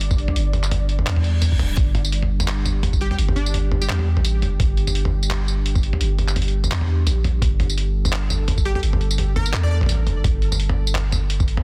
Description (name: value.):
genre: half-time drum and bass.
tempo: 170 BPM.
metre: 4/4.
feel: swing 56% on 16ths, half-time.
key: unclear.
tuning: A4 = 439 Hz.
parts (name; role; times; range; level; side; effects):
deep dark ambient pad; sustained chords; 0.0-11.6 s; G3 to D5; -35 LUFS; equal; chorus, built-in reverb, sidechain pumping.
long sustained 808-style bass; bass; 0.0-11.6 s; D1 to E2; -23 LUFS; equal; none.
boom bap sampler-style drum kit; drums; 0.0-11.6 s; handclaps, hi-hat, tambourine, toms; -27 LUFS; equal; soft clipping on snare.
electronic kick drum; drums; 0.1-11.5 s; none; -22 LUFS; equal; none.
reverse cymbal; sound effects; 1.2-1.8 s; none; -36 LUFS; equal; none.
plucky unison lead; melody; 3.0-4.0, 8.7-9.8 s; D4 to D5; -33 LUFS; equal; analog chorus, tape echo.
room: little or no reverb.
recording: dense, heavily limited modern master.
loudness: -20 LUFS.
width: mono.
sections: 0.0-11.6 A section.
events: reverse cymbal 1.2-1.8.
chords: 0.0 G5.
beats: 0.01 | 0.36 0.71 1.07 1.42 | 1.77 2.13 2.48 2.83 | 3.19 3.54 3.89 4.24 | 4.60 4.95 5.30 5.66 | 6.01 6.36 6.71 7.07 | 7.42 7.77 8.13 8.48 | 8.83 9.19 9.54 9.89 | 10.24 10.60 10.95 11.30.